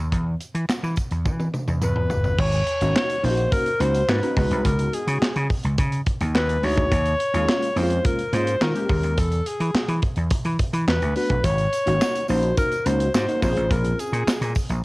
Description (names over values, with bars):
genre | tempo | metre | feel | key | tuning
early-eighties boogie funk | 106 BPM | 4/4 | straight | unclear | A4 = 440 Hz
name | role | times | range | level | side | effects
vintage slap bass | bass | 0.0-14.8 s | G1 to E3 | -23 LUFS | equal | none
modern studio drum kit | drums | 0.1-14.8 s | crash cymbal, handclaps, hi-hat, kick drum, snare drum, toms | -24 LUFS | equal | cassette tape
tambourine | percussion | 0.4-2.4, 11.7-14.8 s | none | -42 LUFS | right 5 dB | none
breathy alto saxophone | melody | 1.8-14.6 s | Ab4 to Db5 | -24 LUFS | left 1 dB | cassette tape
funky polysynth comp | accompaniment | 2.8-14.3 s | Ab3 to Ab4 | -27 LUFS | left 1 dB | chorus, cassette tape
room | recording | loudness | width
light reverb, small room ambience | home recording on cassette | -20 LUFS | side -22 dB against mid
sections
0.0-2.4 A section; 2.4-14.8 B section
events
drum fill 1.3-2.4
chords
0.1 E5; 2.4 Ab9sus4; 4.4 Db9sus4; 6.9 Eb9sus4; 9.2 E9sus4; 11.4 Ab9sus4; 13.4 Bbm7